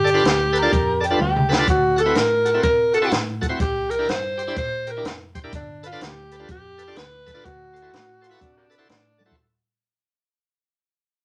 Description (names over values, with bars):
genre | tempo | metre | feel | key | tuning
electric blues shuffle | 125 BPM | 4/4 | swing 63% on 8ths | unclear | A4 = 440 Hz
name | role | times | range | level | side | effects
breathy tenor saxophone | melody | 0.0-8.9 s | D4 to C5 | -24 LUFS | equal | none
bright tonewheel organ | accompaniment | 0.0-9.4 s | C4 to D5 | -27 LUFS | equal | slow rotary speaker, overdrive
vintage muted fingered electric bass | bass | 0.0-9.3 s | F1 to C3 | -32 LUFS | equal | none
compact cocktail drum kit | drums | 0.1-9.4 s | hi-hat, kick drum, snare drum, toms | -26 LUFS | equal | none
overdriven harmonica | second line | 0.6-1.6, 8.3-9.3 s | G3 to Bb4 | -25 LUFS | equal | none
room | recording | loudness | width
wet studio reverb, RT60 0.6 s | none | -20 LUFS | mono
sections
0.0-9.4 A section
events
fade-out 0.0-9.4; drum fill 1.2-1.7, 9.1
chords
0.0 G7; 1.7 D7; 3.6 C7; 5.5 G7; 7.4 D7